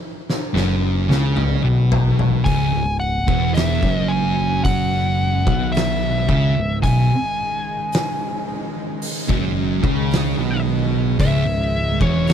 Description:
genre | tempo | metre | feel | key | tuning
stoner and doom metal | 55 BPM | 4/4 | straight | C# minor | A4 = 440 Hz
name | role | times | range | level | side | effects
oversized low-tuned drum kit | drums | 0.3-12.3 s | hi-hat, kick drum, snare drum, toms | -24 LUFS | equal | none
thick fuzz guitar | riff | 0.5-12.3 s | C#2 to C#3 | -23 LUFS | left 9 dB | distortion
thick fuzz guitar | riff | 0.5-12.3 s | C#2 to C#3 | -22 LUFS | right 8 dB | distortion
picked electric bass | bass | 0.5-12.3 s | C#1 to C#2 | -23 LUFS | equal | tube saturation
fuzz lead guitar | melody | 2.4-12.3 s | C#5 to G#5 | -24 LUFS | left 1 dB | distortion, tape echo
bowed-like drone | sustained chords | 4.5-12.3 s | C#3 to G#3 | -30 LUFS | equal | built-in reverb
room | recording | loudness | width
little or no reverb | none | -17 LUFS | side -8 dB against mid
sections
0.0-12.3 A section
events
drum fill 0.3-2.5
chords
0.0 C#m

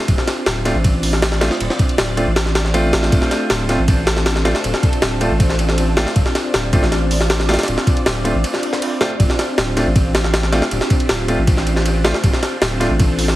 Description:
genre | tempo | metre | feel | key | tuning
drum and bass, jungle | 158 BPM | 4/4 | straight | D minor | A4 = 441 Hz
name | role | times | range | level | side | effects
soft string machine | sustained chords | 0.0-13.4 s | C4 to D5 | -24 LUFS | equal | ensemble chorus, vintage 12-bit sampler grit
saturated sub bass | bass | 0.1-13.4 s | D1 to A1 | -19 LUFS | equal | none
jungle sampler-style drum kit | drums | 0.1-13.4 s | hi-hat, kick drum, ride cymbal, snare drum | -17 LUFS | equal | none
clear grand piano | stabs | 0.7-12.9 s | A3 to F4 | -23 LUFS | equal | dub echo
room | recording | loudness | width
light reverb, digital ambience | heavily compressed radio sound, vinyl crackle | -14 LUFS | side -16 dB against mid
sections
0.0-13.4 A section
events
break 8.4-9.2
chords
0.0 Dm7

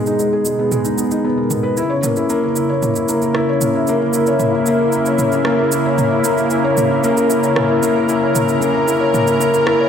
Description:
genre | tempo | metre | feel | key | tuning
piano and strings electronica | 114 BPM | 4/4 | straight | unclear | A4 = 440 Hz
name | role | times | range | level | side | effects
lush unison pad | sustained chords | 0.0-9.9 s | B2 to A#4 | -18 LUFS | right 1 dB | chorus
felt-muted upright piano | riff | 0.0-9.9 s | G#3 to C#5 | -16 LUFS | left 2 dB | tape echo
minimal click drum kit | drums | 0.1-9.8 s | rim click, shaker, toms | -24 LUFS | right 2 dB | overdrive
room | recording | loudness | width
wet echo chamber reverb, RT60 2.3 s | none | -14 LUFS | side -8 dB against mid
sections
0.0-9.9 A section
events
build-up 0.0-9.9; filter sweep on analog synth pad 0.0-9.9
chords
0.0 G#madd9; 1.8 A#dim

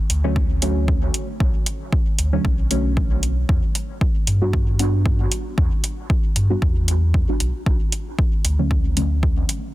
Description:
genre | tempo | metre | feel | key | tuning
dub techno | 115 BPM | 4/4 | swing 55% on 16ths | B minor | A4 = 439 Hz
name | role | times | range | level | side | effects
warm sub bass | bass | 0.1-9.4 s | B1 to G2 | -20 LUFS | equal | sidechain pumping
electronic hi-hat | drums | 0.1-9.6 s | none | -23 LUFS | equal | none
deep mellow chord stab | stabs | 0.2-9.7 s | D3 to F#4 | -26 LUFS | right 1 dB | chorus, phaser, sidechain pumping, dub echo
electronic kick drum | drums | 0.4-9.3 s | none | -20 LUFS | equal | overdrive
room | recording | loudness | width
little or no reverb | dense, heavily limited modern master | -18 LUFS | side -16 dB against mid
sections
0.0-9.7 A section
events
filter sweep on synth stab 0.0-9.7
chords
0.0 Bm7; 3.5 Em7; 7.7 Bm7 (rootless)

